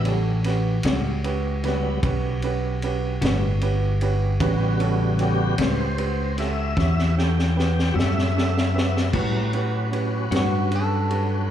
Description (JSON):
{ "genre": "slow blues", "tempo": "51 BPM (dotted quarters)", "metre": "12/8", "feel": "straight", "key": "A mixolydian", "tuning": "A4 = 442 Hz", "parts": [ { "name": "tonewheel organ", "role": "sustained chords", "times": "0.0-11.5 s", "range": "C#3 to G5", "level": "-28 LUFS", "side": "left 1 dB", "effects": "overdrive, chorus vibrato, slow rotary speaker" }, { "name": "fingered electric bass", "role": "bass", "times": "0.0-11.5 s", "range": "G1 to A2", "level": "-23 LUFS", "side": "equal", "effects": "none" }, { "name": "warm concert grand piano", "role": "accompaniment", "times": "0.1-11.5 s", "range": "C#4 to C#5", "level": "-29 LUFS", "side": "right 7 dB", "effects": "slapback echo" }, { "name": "vintage drum kit", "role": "drums", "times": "0.1-11.3 s", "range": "crash cymbal, kick drum, ride cymbal, snare drum", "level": "-28 LUFS", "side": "left 1 dB", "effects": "none" }, { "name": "clean electric guitar", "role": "accompaniment", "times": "0.9-10.6 s", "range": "A2 to F#4", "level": "-29 LUFS", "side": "left 8 dB", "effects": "harmonic tremolo, slapback echo" }, { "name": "clean electric guitar", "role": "melody", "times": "10.4-11.5 s", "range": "F#4 to A4", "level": "-27 LUFS", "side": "left 1 dB", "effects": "slapback echo" } ], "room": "small room ambience", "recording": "live gig heard through the venue's PA, club reverb", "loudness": "-20 LUFS", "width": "side -10 dB against mid", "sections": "0.0-9.1 A section; 9.1-11.5 A section", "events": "tonewheel organ solo 0.0-9.1; drum fill 6.8-9.1; clean electric guitar solo 9.1-11.5", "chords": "0.0 A13", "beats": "0.85 2.04 3.22 | 4.41 5.59 6.77 7.96 | 9.14 10.33" }